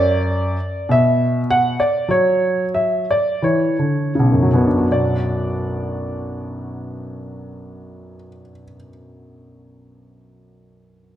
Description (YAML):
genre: classical, baroque-style suite movement for grand piano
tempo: 40-53 BPM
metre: 4/4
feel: rubato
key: B minor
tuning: A4 = 436 Hz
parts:
  - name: warm baby grand piano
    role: solo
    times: 0.0-11.2 s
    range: B1 to F#5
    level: -17 LUFS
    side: equal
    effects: none
room: wet recital hall reverb, RT60 1.6 s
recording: none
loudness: -16 LUFS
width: side -11 dB against mid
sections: 0.0-4.9 A section; 4.9-10.4 B section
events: slowing down 0.0-4.9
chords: 0.0 Bm/F#; 2.1 F#5; 4.9 Bm